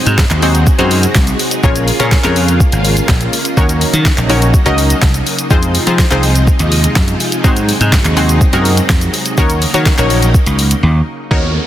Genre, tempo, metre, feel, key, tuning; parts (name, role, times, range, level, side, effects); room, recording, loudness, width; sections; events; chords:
dance-pop; 124 BPM; 4/4; straight; Eb dorian; A4 = 440 Hz
punchy chord stab; accompaniment; 0.0-11.7 s; C4 to Eb5; -17 LUFS; left 1 dB; chorus, sidechain pumping
string machine, violins; sustained chords; 0.0-11.3 s; C3 to F4; -18 LUFS; right 1 dB; ensemble chorus, sidechain pumping
slap bass; bass; 0.1-11.6 s; Ab1 to F3; -14 LUFS; equal; sidechain pumping
smooth R&B drum kit; drums; 0.1-11.4 s; handclaps, hi-hat, kick drum, shaker, snare drum; -13 LUFS; equal
downlifter; sound effects; 11.3-11.7 s; -19 LUFS; right 2 dB
digital ambience; dense, heavily limited modern master; -9 LUFS; side -12 dB against mid
0.0-11.3 A section
break 10.8-11.3
0.0 Ab7; 1.6 Bbm7; 3.6 Ebm7; 5.5 Fm7; 7.4 Ab7; 9.4 Ebm7